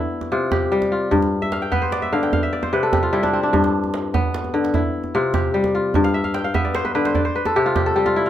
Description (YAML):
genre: west african traditional, West African string and xylophone music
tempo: 99 BPM (dotted quarters)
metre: 12/8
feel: straight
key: unclear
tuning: A4 = 442 Hz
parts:
  - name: kora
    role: arpeggios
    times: 0.0-8.3 s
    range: G2 to G5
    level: -18 LUFS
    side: left 2 dB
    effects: none
  - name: djembe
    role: percussion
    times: 0.1-8.2 s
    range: none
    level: -25 LUFS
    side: right 4 dB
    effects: none
room: moderate small room reverb, RT60 0.6 s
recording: none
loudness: -17 LUFS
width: side -11 dB against mid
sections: 0.0-8.3 A section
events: kora fill 1.4-3.5, 6.0-8.3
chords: 0.0 C; 1.1 G; 2.3 C5; 3.5 G; 4.7 C; 5.9 G; 7.2 C5